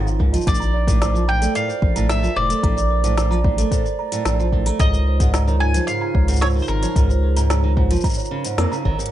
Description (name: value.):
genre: folktronica.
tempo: 111 BPM.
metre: 4/4.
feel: straight.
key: unclear.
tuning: A4 = 441 Hz.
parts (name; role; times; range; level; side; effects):
music box; second line; 0.0-9.1 s; Bb4 to Bb5; -27 LUFS; right 9 dB; ping-pong delay.
warbly tape-like pad; sustained chords; 0.0-9.1 s; Db3 to D5; -30 LUFS; right 1 dB; chorus, built-in reverb.
fingerpicked steel-string acoustic guitar; arpeggios; 0.0-9.1 s; Ab2 to Bb3; -26 LUFS; right 1 dB; digital delay.
round analog bass; bass; 0.0-8.9 s; F1 to F2; -19 LUFS; equal; none.
organic electronic drum kit; drums; 0.1-9.1 s; hi-hat, shaker, snare drum; -28 LUFS; left 1 dB; overdrive, studio reverb.
electronic kick drum; drums; 0.2-9.0 s; none; -20 LUFS; equal; overdrive, studio reverb.
mandolin; melody; 0.5-8.8 s; Bb4 to Ab5; -25 LUFS; left 2 dB; digital delay.
room: light reverb, small room ambience.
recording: dark, warm production, nothing above 10.5 kHz.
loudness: -16 LUFS.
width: side -12 dB against mid.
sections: 0.0-9.1 A section.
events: band accent 8.6.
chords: 0.5 Bbmaj7; 4.8 Db69.